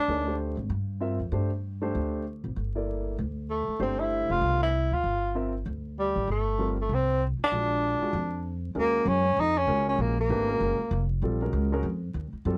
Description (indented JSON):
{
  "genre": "modal jazz",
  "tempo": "194 BPM",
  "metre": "4/4",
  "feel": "swing 60% on 8ths",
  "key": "G dorian, Eb minor from 8.8 s",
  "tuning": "A4 = 439 Hz",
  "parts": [
    { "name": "mellow tenor saxophone", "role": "melody", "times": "0.0-0.4, 3.5-11.1 s", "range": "G3 to F4", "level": "-29 LUFS", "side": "equal", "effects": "none" },
    { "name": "warm grand piano", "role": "accompaniment", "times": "0.1-12.6 s", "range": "G3 to E5", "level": "-35 LUFS", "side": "equal", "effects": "none" },
    { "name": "upright bass", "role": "bass", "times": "0.1-12.6 s", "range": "F1 to G2", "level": "-32 LUFS", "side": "equal", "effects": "none" }
  ],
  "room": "little or no reverb",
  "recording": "dry, gritty hardware recording, vinyl crackle",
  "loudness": "-28 LUFS",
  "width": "mono",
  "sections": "0.0-8.8 A section; 8.8-12.6 B section",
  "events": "none",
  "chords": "0.0 Gsus4; 7.5 Bb7b13; 8.8 Ebm9",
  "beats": "| 0.09 0.40 0.71 1.02 | 1.32 1.64 1.94 2.25 | 2.56 2.87 3.18 3.49 | 3.80 4.11 4.42 4.73 | 5.04 5.35 5.66 5.97 | 6.28 6.59 6.90 7.21 | 7.52 7.83 8.14 8.45 | 8.76 9.07 9.38 9.69 | 9.99 10.30 10.61 10.92 | 11.23 11.54 11.84 12.15 | 12.46"
}